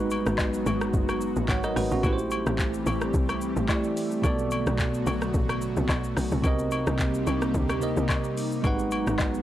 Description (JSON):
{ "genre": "amapiano", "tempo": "109 BPM", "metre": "4/4", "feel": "swing 55% on 16ths", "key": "unclear", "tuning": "A4 = 441 Hz", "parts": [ { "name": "bell-like tine electric piano", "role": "accompaniment", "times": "0.0-9.4 s", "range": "B2 to F#5", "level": "-29 LUFS", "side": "right 2 dB", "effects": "fast stereo tremolo" }, { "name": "airy breathy pad", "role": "sustained chords", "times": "0.0-9.4 s", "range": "D3 to G4", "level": "-30 LUFS", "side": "left 1 dB", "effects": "chorus, sidechain pumping" }, { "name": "tight log drum bass", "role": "bass", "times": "0.0-9.4 s", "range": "F#1 to D2", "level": "-30 LUFS", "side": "equal", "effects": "none" }, { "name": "smooth R&B drum kit", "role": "drums", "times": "0.1-9.4 s", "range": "handclaps, hi-hat, kick drum, rim click, shaker", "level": "-29 LUFS", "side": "equal", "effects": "none" }, { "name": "agogo bells and woodblock", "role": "percussion", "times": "0.1-9.3 s", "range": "none", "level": "-34 LUFS", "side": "left 3 dB", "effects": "none" } ], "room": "digital ambience", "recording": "dry, gritty hardware recording, transformer saturation, cassette tape", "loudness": "-24 LUFS", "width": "side -12 dB against mid", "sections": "0.0-9.4 A section", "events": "none", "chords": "0.0 G#m7; 2.0 Am7; 4.2 Bm7; 6.4 Cm7; 8.6 G#m7" }